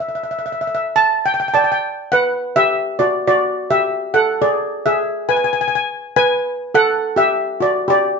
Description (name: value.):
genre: calypso.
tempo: 104 BPM.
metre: 4/4.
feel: straight.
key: G major.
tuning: A4 = 440 Hz.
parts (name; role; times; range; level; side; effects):
steel pan; solo; 0.0-8.2 s; F#4 to A5; -15 LUFS; equal; none.
room: wet studio reverb, RT60 0.7 s.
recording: band playing live in one room, nothing above 7.7 kHz.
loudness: -15 LUFS.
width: side -4 dB against mid.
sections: 0.0-2.1 A section; 2.1-8.2 B section.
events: none.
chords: 0.0 N.C.; 2.1 Gmaj7; 4.4 G#dim; 6.7 Em11.